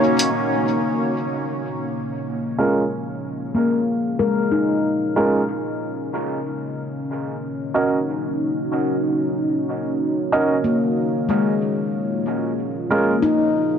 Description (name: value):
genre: ambient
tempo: 93 BPM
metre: 4/4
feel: swing 59% on 16ths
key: unclear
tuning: A4 = 440 Hz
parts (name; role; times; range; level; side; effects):
- deep dark ambient pad; sustained chords; 0.0-13.8 s; Bb3 to Db5; -23 LUFS; equal; chorus, built-in reverb
- clear upright piano; stabs; 2.6-13.1 s; Ab3 to Eb5; -23 LUFS; right 2 dB; low-pass filter, dub echo
- handpan; arpeggios; 3.5-13.8 s; Ab3 to Bb4; -21 LUFS; left 3 dB; low-pass filter, dub echo
room: moderate huge ambient reverb, RT60 5.1 s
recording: none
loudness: -19 LUFS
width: side -8 dB against mid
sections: 0.3-13.8 A section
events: filter sweep on ambient pad 0.3-13.8; filter sweep on handpan 0.3-13.8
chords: 0.3 Bbm7; 5.5 Ebm7; 10.6 Bbm7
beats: | 0.32 0.97 1.61 2.26 | 2.90 3.55 4.19 4.84 | 5.49 6.13 6.78 7.42 | 8.06 8.71 9.36 10.00 | 10.65 11.29 11.94 12.58 | 13.23